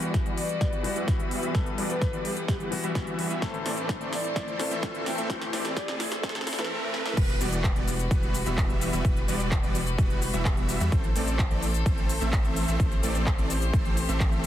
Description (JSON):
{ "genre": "EDM, festival progressive house", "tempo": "128 BPM", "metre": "4/4", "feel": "straight", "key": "E minor", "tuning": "A4 = 445 Hz", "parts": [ { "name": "clear concert grand piano", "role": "accompaniment", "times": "0.0-7.2 s", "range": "A2 to C5", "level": "-35 LUFS", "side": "left 6 dB", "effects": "sidechain pumping, digital delay" }, { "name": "rich chamber string section", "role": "sustained chords", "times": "0.0-14.5 s", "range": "E3 to C5", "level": "-36 LUFS", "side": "left 1 dB", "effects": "sidechain pumping" }, { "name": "supersaw chords", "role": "riff", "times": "0.0-14.5 s", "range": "E3 to E5", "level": "-32 LUFS", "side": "right 1 dB", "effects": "sidechain pumping, low-pass filter, digital delay" }, { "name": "big-room dance drum kit", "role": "drums", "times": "0.0-14.5 s", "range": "crash cymbal, handclaps, hi-hat, shaker, snare drum", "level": "-34 LUFS", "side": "equal", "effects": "overdrive, high-pass filter on hats, high-pass filter on snare, high-pass filter on cymbals, high-pass filter on perc" }, { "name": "riser", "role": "sound effects", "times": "0.0-7.2 s", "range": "none", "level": "-38 LUFS", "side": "right 1 dB", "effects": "none" }, { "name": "electronic kick drum", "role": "drums", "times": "0.1-14.3 s", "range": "none", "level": "-26 LUFS", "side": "equal", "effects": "overdrive" }, { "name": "breathy flute-like synth lead", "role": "melody", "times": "0.4-6.7 s", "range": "G4 to G5", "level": "-36 LUFS", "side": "equal", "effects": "chorus, digital delay" }, { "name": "saturated sub bass", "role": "bass", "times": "7.2-14.5 s", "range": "E1 to E2", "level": "-29 LUFS", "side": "equal", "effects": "sidechain pumping" } ], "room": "digital ambience", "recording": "dense, heavily limited modern master, high-pass filter", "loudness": "-24 LUFS", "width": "side -12 dB against mid", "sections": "0.0-7.2 A section; 7.2-14.5 B section", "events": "build-up 0.0-7.2; drum fill 0.0-6.7, 6.9; riser 0.0-7.2; filter sweep on supersaw synth 0.0-7.2; filter sweep 0.0-7.2; drop 7.2-14.5", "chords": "0.0 Emadd9; 3.4 Am; 7.2 Emadd9; 10.9 Am", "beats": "0.14 0.61 1.08 | 1.55 2.02 2.48 2.95 | 3.42 3.89 4.36 4.83 | 5.30 5.77 6.24 6.70 | 7.17 7.64 8.11 8.58 | 9.05 9.52 9.98 10.45 | 10.92 11.39 11.86 12.33 | 12.80 13.27 13.73 14.20" }